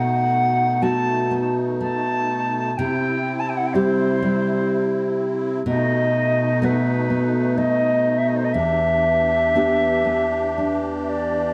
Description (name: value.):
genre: celtic folk, Celtic slow air.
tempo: 57-64 BPM.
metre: 3/4.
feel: rubato.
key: unclear.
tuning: A4 = 440 Hz.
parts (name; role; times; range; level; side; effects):
wooden flute; melody; 0.0-11.5 s; B4 to A5; -24 LUFS; equal; none.
nylon-string guitar; accompaniment; 0.0-11.5 s; E2 to G4; -24 LUFS; equal; none.
musette accordion; sustained chords; 0.0-11.5 s; B2 to G4; -30 LUFS; equal; none.
room: moderate recital hall reverb, RT60 1.5 s.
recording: dark, warm production.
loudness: -21 LUFS.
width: mono.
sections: 0.0-11.5 A section.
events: none.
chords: 0.0 B7; 2.8 C; 5.7 B7; 8.5 Em7.